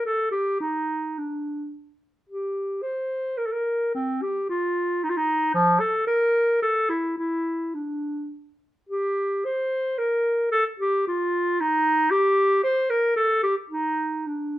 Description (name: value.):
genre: classical, baroque-style fantasia for unaccompanied clarinet.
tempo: 102-117 BPM.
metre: 3/4.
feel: rubato.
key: G minor, D minor from 5.6 s, G minor from 8.9 s.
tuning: A4 = 439 Hz.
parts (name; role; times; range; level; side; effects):
warm clarinet; solo; 0.0-14.6 s; F3 to C5; -22 LUFS; equal; none.
room: light reverb.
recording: none.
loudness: -22 LUFS.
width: side -14 dB against mid.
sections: 0.0-8.9 A section; 8.9-14.6 A section.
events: none.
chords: none.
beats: 0.06 | 0.62 1.18 1.74 | 2.29 2.84 3.39 | 3.96 4.52 5.05 | 5.56 6.09 6.63 | 7.18 7.75 8.33 | 8.90 9.46 9.99 | 10.54 11.06 11.59 | 12.11 12.64 13.17 | 13.70 14.26.